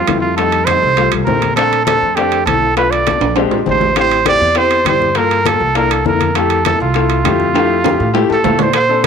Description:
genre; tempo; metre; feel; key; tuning
Afro-Cuban jazz; 201 BPM; 4/4; straight; F major; A4 = 440 Hz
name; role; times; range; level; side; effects
warm trumpet; melody; 0.0-9.1 s; F4 to D5; -14 LUFS; right 4 dB; none
upright bass; bass; 0.0-9.1 s; A1 to Bb2; -21 LUFS; right 2 dB; none
warm upright piano; accompaniment; 0.1-9.1 s; G3 to A5; -17 LUFS; left 8 dB; none
bongos; percussion; 0.1-9.1 s; none; -24 LUFS; left 10 dB; none
congas; percussion; 0.1-9.1 s; none; -24 LUFS; left 9 dB; none
timbales; percussion; 0.1-9.1 s; none; -21 LUFS; right 14 dB; none
room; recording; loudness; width
moderate plate reverb, RT60 2.9 s; 1960s-style stereo with parts hard left and right; -11 LUFS; side -6 dB against mid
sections
0.0-8.7 A section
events
drum fill 3.2-4.0, 7.6-8.7; upright piano fill 8.1-8.7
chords
0.4 F9; 1.6 Bbmaj9; 2.8 Bm7b5; 3.4 Bb13; 4.0 Am7; 5.2 Gm9; 5.8 C13; 6.4 Fmaj7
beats
0.08 | 0.38 0.67 0.97 1.27 | 1.57 1.87 2.17 2.47 | 2.77 3.07 3.37 3.66 | 3.96 4.26 4.56 4.86 | 5.16 5.46 5.76 6.06 | 6.36 6.65 6.95 7.25 | 7.55 7.85 8.15 8.45 | 8.74 9.04

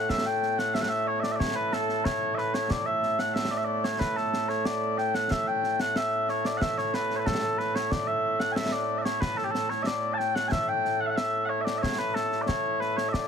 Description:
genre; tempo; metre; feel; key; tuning
scottish traditional, Scottish pipe music; 92 BPM; 2/4; straight; A mixolydian; A4 = 440 Hz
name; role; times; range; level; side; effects
mellow small bagpipes; melody; 0.0-13.3 s; A2 to A5; -26 LUFS; equal; none
concert snare drum and concert bass drum; drums; 0.1-13.3 s; none; -33 LUFS; equal; none
room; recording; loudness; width
light reverb; heavily compressed radio sound; -25 LUFS; side -7 dB against mid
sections
0.0-7.9 A section; 7.9-13.3 A section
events
none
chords
none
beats
| 0.09 0.74 | 1.40 2.05 | 2.70 3.35 | 4.00 4.66 | 5.31 5.96 | 6.61 7.27 | 7.92 8.57 | 9.22 9.87 | 10.53 11.18 | 11.83 12.48 | 13.13

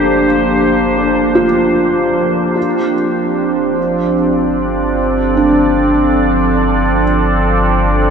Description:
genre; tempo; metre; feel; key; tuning
ambient; free time; none; none; unclear; A4 = 440 Hz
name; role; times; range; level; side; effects
evolving wavetable pad; sustained chords; 0.0-8.1 s; F3 to D5; -12 LUFS; right 1 dB; chorus, built-in reverb
felt-muted upright piano; arpeggios; 0.0-8.1 s; D4 to A4; -18 LUFS; left 1 dB; diffuse ambient delay
round analog bass; bass; 0.0-8.1 s; G1; -21 LUFS; left 1 dB; none
room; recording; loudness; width
wet cathedral reverb, RT60 6.3 s; in a vast, echoing space, cassette tape; -11 LUFS; side -6 dB against mid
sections
0.0-8.1 A section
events
fade-in on analog synth bass 0.0-8.1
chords
0.0 Gm7; 2.6 Dm7/G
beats
free time

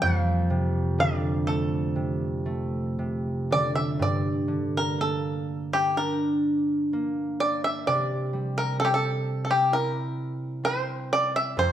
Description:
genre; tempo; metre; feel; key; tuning
celtic folk, Celtic slow air; 56-65 BPM; 4/4; rubato; G dorian; A4 = 441 Hz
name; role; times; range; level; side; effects
bluegrass banjo; melody; 0.0-11.7 s; G4 to F5; -26 LUFS; equal; none
concert harp; accompaniment; 0.0-11.7 s; F2 to G4; -26 LUFS; right 1 dB; none
room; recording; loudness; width
moderate recital hall reverb, RT60 1.4 s; none; -24 LUFS; side -10 dB against mid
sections
0.0-4.0 A section; 4.0-11.7 B section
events
none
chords
0.0 F6; 4.0 Gm; 7.9 C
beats
| 0.02 0.99 1.96 2.99 | 4.01 4.98 5.96 6.92 | 7.87 8.80 9.72 10.65 | 11.57

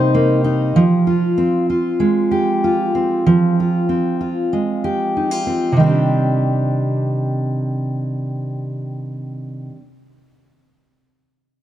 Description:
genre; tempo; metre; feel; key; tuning
pop; 96 BPM; 4/4; straight; unclear; A4 = 439 Hz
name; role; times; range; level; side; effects
fingerpicked steel-string acoustic guitar; accompaniment; 0.0-9.8 s; C3 to G4; -16 LUFS; right 1 dB; none
room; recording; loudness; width
moderate plate reverb, RT60 2.9 s; dark, warm production; -15 LUFS; side -12 dB against mid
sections
0.8-5.8 A section; 5.8-8.3 B section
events
none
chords
0.0 Cm7; 0.8 Fmadd9; 5.8 Cmadd9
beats
0.14 | 0.77 1.39 2.02 2.64 | 3.27 3.90 4.52 5.15 | 5.78 6.40 7.03 7.66

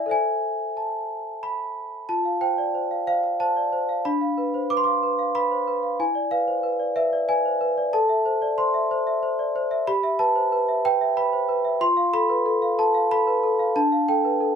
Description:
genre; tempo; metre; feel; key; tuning
classical, lullaby for celesta; 92 BPM; 3/4; straight; A minor; A4 = 439 Hz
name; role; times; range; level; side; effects
large celesta; solo; 0.0-14.6 s; D4 to D6; -20 LUFS; equal; none
room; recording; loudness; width
light reverb; close, detailed microphones; -20 LUFS; side -7 dB against mid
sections
0.0-2.1 A section; 2.1-14.6 B section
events
none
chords
0.1 Am; 2.1 F; 4.0 Bdim/D; 6.0 E7; 7.9 Am; 9.9 Em/G; 11.8 F; 13.8 Dm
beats
| 0.11 0.77 1.43 | 2.09 2.74 3.39 | 4.04 4.70 5.35 | 5.99 6.64 7.29 | 7.93 8.58 9.22 | 9.87 10.52 11.16 | 11.81 12.46 13.10 | 13.75 14.40

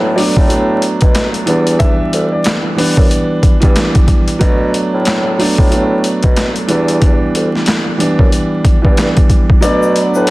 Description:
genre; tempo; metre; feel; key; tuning
hip hop, boom-bap hip-hop; 92 BPM; 4/4; swing 60% on 16ths; B minor; A4 = 442 Hz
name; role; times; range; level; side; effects
dark upright piano; melody; 0.0-3.7, 9.6-10.3 s; B4 to E5; -20 LUFS; left 1 dB; digital delay
dark concert grand piano; accompaniment; 0.0-10.3 s; E3 to D4; -15 LUFS; right 1 dB; none
mellow bassoon; bass; 0.0-10.3 s; D2 to B2; -17 LUFS; equal; none
boom bap sampler-style drum kit; drums; 0.2-10.3 s; handclaps, hi-hat, kick drum, snare drum; -12 LUFS; equal; overdrive
warm analog pad; sustained chords; 9.6-10.3 s; D4 to B5; -22 LUFS; left 2 dB; none
egg shaker; percussion; 9.6-10.3 s; none; -31 LUFS; left 6 dB; none
room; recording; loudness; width
small room ambience; dense, heavily limited modern master, vinyl crackle; -10 LUFS; side -20 dB against mid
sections
0.0-9.6 A section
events
kick muted 9.6-10.3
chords
0.0 Bm7; 1.5 Em7; 4.4 Bm7; 6.7 Em7; 9.6 Bm7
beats
0.49 1.15 | 1.80 2.45 3.10 3.76 | 4.41 5.06 5.71 6.37 | 7.02 7.67 8.32 8.97 | 9.63 10.28

